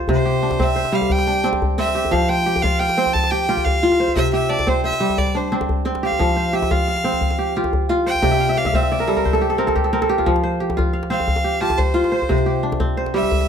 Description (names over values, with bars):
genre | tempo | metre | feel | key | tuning
west african traditional, West African string and xylophone music | 118 BPM (dotted quarters) | 12/8 | straight | F major | A4 = 437 Hz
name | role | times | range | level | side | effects
kora | arpeggios | 0.0-13.5 s | C3 to F5 | -19 LUFS | equal | none
djembe | percussion | 0.0-13.5 s | none | -23 LUFS | left 1 dB | none
clear fiddle | melody | 0.1-13.5 s | C5 to A5 | -22 LUFS | right 1 dB | none
room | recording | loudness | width
light reverb | close, detailed microphones | -16 LUFS | side -7 dB against mid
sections
0.0-13.5 A section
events
fiddle solo 0.0-13.5; kora fill 8.2-10.3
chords
0.1 C; 2.1 F5; 4.2 C; 6.2 F5; 8.2 C; 10.3 F5; 12.3 C